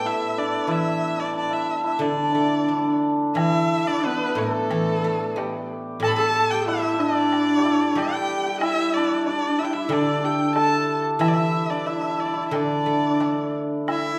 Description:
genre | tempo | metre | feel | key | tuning
chinese traditional, Chinese chamber ensemble | 91 BPM | 4/4 | rubato | D zhi mode | A4 = 441 Hz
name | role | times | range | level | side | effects
clear erhu | melody | 0.0-14.2 s | A4 to B5 | -30 LUFS | equal | none
hammered dulcimer | second line | 0.0-14.2 s | A3 to A4 | -27 LUFS | equal | none
guzheng | accompaniment | 0.0-14.2 s | A2 to D4 | -29 LUFS | equal | none
rich horsehead fiddle | second line | 3.4-14.2 s | A3 to A4 | -29 LUFS | equal | none
woodblock | percussion | 3.4-14.0 s | none | -37 LUFS | equal | none
breathy low xiao | second line | 13.9-14.2 s | E4 | -34 LUFS | equal | none
room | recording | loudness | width
wet recital hall reverb, RT60 1.5 s | none | -23 LUFS | mono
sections
0.0-3.4 A section; 3.4-13.9 B section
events
none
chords
none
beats
0.04 | 0.69 1.34 2.01 2.69 | 3.37 4.04 4.71 5.37 | 6.03 6.68 7.32 7.97 | 8.62 9.26 9.91 10.55 | 11.21 11.87 12.53 13.21 | 13.88

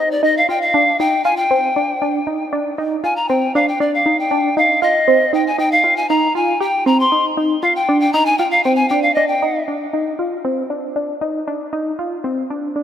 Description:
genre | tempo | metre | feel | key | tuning
progressive instrumental, progressive | 235 BPM (eighths) | 7/8 | straight | unclear | A4 = 440 Hz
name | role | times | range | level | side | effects
bright polished pan flute | melody | 0.0-9.6 s | D5 to C6 | -16 LUFS | left 1 dB | digital delay
tight sequenced synth | arpeggios | 0.0-12.8 s | C4 to G4 | -18 LUFS | right 1 dB | chorus, phaser
room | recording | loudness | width
moderate lush hall reverb, RT60 2.6 s | rough home demo mix | -14 LUFS | side -9 dB against mid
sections
0.0-9.7 A section; 9.7-12.8 B section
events
pan flute solo 0.0-9.7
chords
0.0 N.C.; 0.7 Cmadd9; 6.1 Cm; 7.9 Cmadd9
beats
0.23 0.48 | 0.74 0.99 1.25 1.50 1.76 2.01 2.27 | 2.52 2.78 3.04 3.29 3.55 3.80 4.06 | 4.31 4.57 4.82 5.08 5.33 5.59 5.84 | 6.10 6.35 6.61 6.86 7.12 7.37 7.63 | 7.88 8.14 8.40 8.65 8.91 9.16 9.42 | 9.68 9.93 10.19 10.45 10.70 10.96 11.22 | 11.47 11.73 11.99 12.24 12.50 12.76

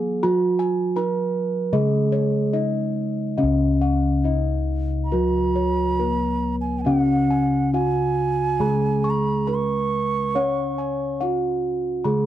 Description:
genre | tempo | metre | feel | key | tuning
Javanese gamelan | 69-85 BPM | 4/4 | straight | Db slendro | A4 = 438 Hz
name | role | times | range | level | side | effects
gamelan-type bronze metallophone | melody | 0.0-12.3 s | Cb4-45c to Db5 | -23 LUFS | right 1 dB | none
gamelan-type bronze metallophone | accompaniment | 0.0-12.3 s | Db3 to Db4 | -26 LUFS | right 2 dB | none
gamelan-type bossed gongs | bass | 0.0-12.3 s | Db2 to Db5 | -26 LUFS | left 1 dB | none
gamelan-type bossed gongs | arpeggios | 0.2-12.3 s | Cb5-45c to Db6 | -31 LUFS | left 6 dB | none
bansuri | second line | 5.0-11.2 s | Gb5-32c to Db6 | -27 LUFS | right 5 dB | none
room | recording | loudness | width
light reverb | dark, warm production | -19 LUFS | side -12 dB against mid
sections
0.0-3.4 A section; 3.4-12.3 B section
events
none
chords
none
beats
| 0.23 0.96 1.73 2.53 | 3.38 4.25 5.12 5.99 | 6.86 7.73 8.60 9.47 | 10.35 11.21 12.04

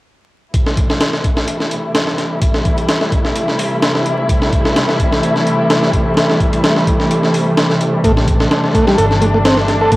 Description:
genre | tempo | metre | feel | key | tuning
breakbeat, breaks | 128 BPM | 4/4 | swing 54% on 16ths | A minor | A4 = 444 Hz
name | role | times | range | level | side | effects
muted studio string section | sustained chords | 0.5-10.0 s | C3 to E4 | -16 LUFS | equal | sidechain pumping
breakbeat sampler-style drum kit | drums | 0.5-10.0 s | hi-hat, kick drum, snare drum | -15 LUFS | equal | cassette tape
overdriven combo organ | riff | 8.0-10.0 s | G3 to A4 | -14 LUFS | equal | tape echo
vintage muted fingered electric bass | bass | 8.0-10.0 s | G1 to A1 | -17 LUFS | equal | tube saturation
room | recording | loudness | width
moderate studio reverb, RT60 0.6 s | home recording on cassette, vinyl crackle | -12 LUFS | side -18 dB against mid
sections
0.5-10.0 A section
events
none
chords
0.5 Am7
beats
| 0.54 1.01 1.48 1.95 | 2.42 2.89 3.35 3.82 | 4.29 4.76 5.23 5.70 | 6.17 6.64 7.11 7.57 | 8.04 8.51 8.98 9.45 | 9.92

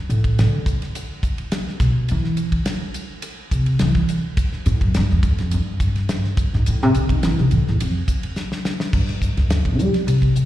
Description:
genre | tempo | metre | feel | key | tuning
electric jazz fusion | 105 BPM | 4/4 | straight | unclear | A4 = 440 Hz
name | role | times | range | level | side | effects
upright bass | bass | 0.1-10.5 s | D2 to G3 | -18 LUFS | equal | none
damped 70s drum kit | drums | 0.1-10.5 s | crash cymbal, hi-hat, kick drum, ride cymbal, snare drum | -23 LUFS | equal | none
room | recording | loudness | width
little or no reverb | live gig heard through the venue's PA, recital hall reverb | -18 LUFS | side -14 dB against mid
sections
0.0-8.9 A section; 8.9-10.5 B section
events
upright bass solo 0.0-8.9; drum fill 8.4-8.9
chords
none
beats
0.38 0.95 1.52 | 2.09 2.66 3.23 3.80 | 4.37 4.94 5.51 6.08 | 6.65 7.22 7.79 8.36 | 8.93 9.50 10.07

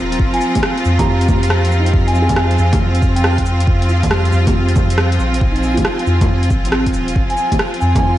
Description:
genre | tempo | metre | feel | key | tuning
future garage | 138 BPM | 4/4 | swing 66% on 16ths | F minor | A4 = 440 Hz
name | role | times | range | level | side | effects
felt-muted upright piano | accompaniment | 0.0-8.2 s | G3 to G5 | -25 LUFS | right 1 dB | sidechain pumping, tape echo
rich symphonic string section | sustained chords | 0.0-8.2 s | F3 to F4 | -20 LUFS | equal | sidechain pumping
soft dub sub bass | bass | 0.0-8.2 s | Eb1 to F2 | -16 LUFS | equal | sidechain pumping
backwards swelling texture | texture | 0.0-8.2 s | F4 to Bb5 | -30 LUFS | left 1 dB | built-in reverb
deep house drum kit | drums | 0.1-8.0 s | bongos, cabasa, hi-hat, rim click | -21 LUFS | equal | none
electronic kick drum | drums | 0.2-8.0 s | none | -18 LUFS | equal | none
vibraphone with soft mallets | melody | 0.3-2.7, 7.3-8.0 s | Ab5 to Bb5 | -22 LUFS | equal | tape echo
room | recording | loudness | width
light reverb | vinyl crackle, nothing above 10.8 kHz | -12 LUFS | side -14 dB against mid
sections
0.0-8.2 A section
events
none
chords
0.0 Fm7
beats
| 0.20 0.63 1.07 1.50 | 1.94 2.37 2.81 3.24 | 3.67 4.11 4.54 4.98 | 5.41 5.85 6.28 6.72 | 7.15 7.59 8.02

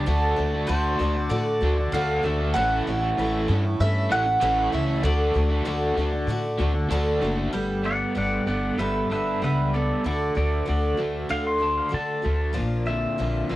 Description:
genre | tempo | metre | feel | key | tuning
folk rock and heartland rock | 96 BPM | 4/4 | straight | D major | A4 = 441 Hz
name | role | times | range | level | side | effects
mandolin | melody | 0.0-6.9 s | D5 to A5 | -26 LUFS | right 2 dB | cassette tape, analog delay
picked steel-string acoustic guitar | accompaniment | 0.0-13.6 s | A2 to A4 | -28 LUFS | left 1 dB | none
pedal harmonium | sustained chords | 0.0-7.5 s | E4 to A5 | -35 LUFS | right 1 dB | none
crunchy overdriven guitar | riff | 0.0-13.6 s | A2 to F#4 | -29 LUFS | right 1 dB | tremolo
upright bass | bass | 0.0-13.6 s | F#1 to D3 | -26 LUFS | equal | none
pedal steel guitar | second line | 0.7-2.5, 7.9-13.6 s | A4 to C6 | -28 LUFS | equal | analog delay
room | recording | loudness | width
light reverb | home recording on cassette | -21 LUFS | side -16 dB against mid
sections
0.0-7.5 A section; 7.5-13.6 B section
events
pedal steel guitar solo 7.5-13.6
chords
0.1 D; 2.5 A; 5.0 D; 7.5 Gadd9; 10.0 D; 12.6 Bb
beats
| 0.07 0.69 1.31 1.93 | 2.55 3.17 3.79 4.41 | 5.04 5.66 6.28 6.91 | 7.54 8.16 8.79 9.42 | 10.04 10.67 11.30 11.93 | 12.56 13.18

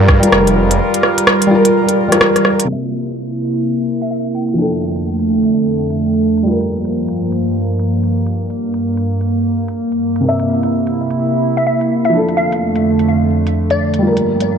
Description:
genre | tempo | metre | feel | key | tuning
future garage | 127 BPM | 4/4 | swing 62% on 16ths | G dorian | A4 = 440 Hz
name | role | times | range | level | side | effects
felt-muted upright piano | accompaniment | 0.0-14.6 s | C3 to E5 | -17 LUFS | left 1 dB | vintage 12-bit sampler grit, sidechain pumping, dub echo
warbly tape-like pad | sustained chords | 0.0-14.6 s | F2 to Bb4 | -15 LUFS | right 1 dB | chorus, built-in reverb, vintage 12-bit sampler grit, sidechain pumping
swelling detuned saw bass | bass | 0.0-0.8 s | F1 to G2 | -14 LUFS | equal | tube saturation, sidechain pumping
organic electronic drum kit | drums | 0.1-14.5 s | hi-hat, rim click | -15 LUFS | right 1 dB | low-pass filter on hats, low-pass filter on snare, low-pass filter on room
glassy wavetable pluck | melody | 4.0-5.1, 11.6-14.1 s | D5 to G5 | -20 LUFS | left 1 dB | chorus, ping-pong delay
room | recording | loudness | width
moderate lush hall reverb, RT60 2.2 s | vinyl crackle, low-pass filter | -13 LUFS | side -7 dB against mid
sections
0.0-2.7 A section; 2.7-14.6 B section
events
filter sweep on drum 2.7-14.6; filter sweep 2.7-14.6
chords
0.0 Gm7; 2.7 C7; 4.6 F6; 6.5 Gm7; 10.2 C7; 12.1 F6; 14.0 Gm7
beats
0.33 | 0.80 1.27 1.74 2.21 | 2.69 3.16 3.63 4.11 | 4.58 5.05 5.52 6.00 | 6.47 6.94 7.41 7.88 | 8.36 8.83 9.30 9.77 | 10.25 10.72 11.19 11.66 | 12.14 12.61 13.08 13.55 | 14.03 14.50

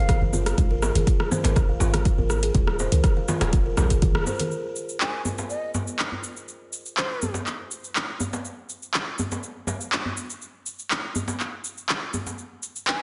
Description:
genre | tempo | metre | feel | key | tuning
afro house | 122 BPM | 4/4 | straight | unclear | A4 = 440 Hz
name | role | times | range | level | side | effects
breathy mellow silver concert flute | melody | 0.0-0.2, 5.0-7.3, 12.9-13.0 s | C5 to Ab5 | -36 LUFS | equal | digital delay
buzzing kalimba | arpeggios | 0.0-4.5 s | F4 to F5 | -34 LUFS | equal | sidechain pumping, digital delay
warm 808-style bass | bass | 0.0-4.2 s | Eb1 to Db2 | -27 LUFS | equal | sidechain pumping
deep house drum kit | drums | 0.1-13.0 s | cabasa, handclaps, hi-hat, rim click | -30 LUFS | equal | overdrive
electronic kick drum | drums | 0.1-4.1 s | none | -24 LUFS | equal | overdrive
congas | percussion | 0.1-4.5 s | none | -33 LUFS | equal | none
djembe | percussion | 0.3-12.4 s | none | -34 LUFS | equal | none
room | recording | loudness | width
light reverb, small room ambience | nothing above 10.9 kHz | -25 LUFS | mono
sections
0.0-4.5 A section; 4.5-13.0 B section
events
band accent 4.1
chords
0.0 Gbmaj7; 0.6 Gbmaj7sus2 (rootless); 2.5 Ebsus2; 4.5 N.C.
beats
0.09 | 0.58 1.07 1.56 2.06 | 2.55 3.04 3.53 4.02 | 4.51 5.00 5.50 5.99 | 6.48 6.97 7.46 7.96 | 8.45 8.94 9.43 9.92 | 10.41 10.91 11.40 11.89 | 12.38 12.87

